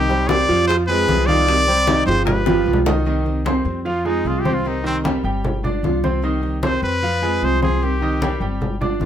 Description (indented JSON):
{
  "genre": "latin, Cuban son and guajira",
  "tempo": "151 BPM",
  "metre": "4/4",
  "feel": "straight",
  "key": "C harmonic minor",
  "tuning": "A4 = 440 Hz",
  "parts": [
    { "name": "bright trumpet", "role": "melody", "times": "0.0-8.4 s", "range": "C4 to D5", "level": "-20 LUFS", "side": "left 1 dB", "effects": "none" },
    { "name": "mellow hollow concert flute", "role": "second line", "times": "0.0-2.8 s", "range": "Eb4 to Ab4", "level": "-28 LUFS", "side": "right 3 dB", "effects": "none" },
    { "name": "nylon-string guitar", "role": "accompaniment", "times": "0.0-9.1 s", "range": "C3 to G4", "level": "-24 LUFS", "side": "right 2 dB", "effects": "none" },
    { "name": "bright concert grand piano", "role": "arpeggios", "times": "0.0-9.1 s", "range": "Eb3 to D6", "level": "-23 LUFS", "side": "right 2 dB", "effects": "none" },
    { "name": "upright bass", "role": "bass", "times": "0.0-9.1 s", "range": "G1 to F2", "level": "-23 LUFS", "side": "left 1 dB", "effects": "none" },
    { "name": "bongos", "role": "percussion", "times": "0.1-3.0 s", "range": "none", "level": "-27 LUFS", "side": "left 6 dB", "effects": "none" },
    { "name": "congas", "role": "percussion", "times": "0.1-9.1 s", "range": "none", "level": "-24 LUFS", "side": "left 1 dB", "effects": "none" }
  ],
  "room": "light reverb",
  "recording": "minimal, uncompressed stereo recording",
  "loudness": "-16 LUFS",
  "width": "side -9 dB against mid",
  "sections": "0.0-3.1 A section; 3.1-9.1 B section",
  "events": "drum fill 2.5-3.1; trumpet solo 3.1-9.1",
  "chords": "0.0 Cm; 0.7 Fm; 1.5 Cm; 2.3 G7; 3.1 Cm; 3.9 Fm; 4.6 Cm; 5.4 G7; 6.2 Cm; 7.0 Fm; 7.8 Cm",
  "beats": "0.29 0.69 1.08 | 1.48 1.88 2.27 2.67 | 3.06 3.46 3.85 4.25 | 4.65 5.04 5.44 5.83 | 6.23 6.63 7.02 7.42 | 7.82 8.21 8.61 9.01"
}